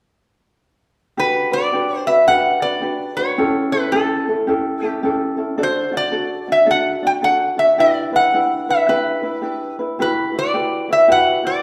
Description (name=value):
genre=Hawaiian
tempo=109 BPM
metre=4/4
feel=swing 64% on 8ths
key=G major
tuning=A4 = 440 Hz
part: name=metal-body resonator slide guitar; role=melody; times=1.2-11.6 s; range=A4 to G5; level=-19 LUFS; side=equal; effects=none
part: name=ukulele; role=accompaniment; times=1.2-11.6 s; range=C#4 to D5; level=-23 LUFS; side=equal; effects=none
room=wet recital hall reverb, RT60 1.4 s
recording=recorded in a church or concert hall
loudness=-18 LUFS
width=mono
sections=1.2-11.6 A section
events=none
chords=1.2 Gmaj7; 3.4 A7; 5.6 D; 7.8 G6; 10.0 Emadd9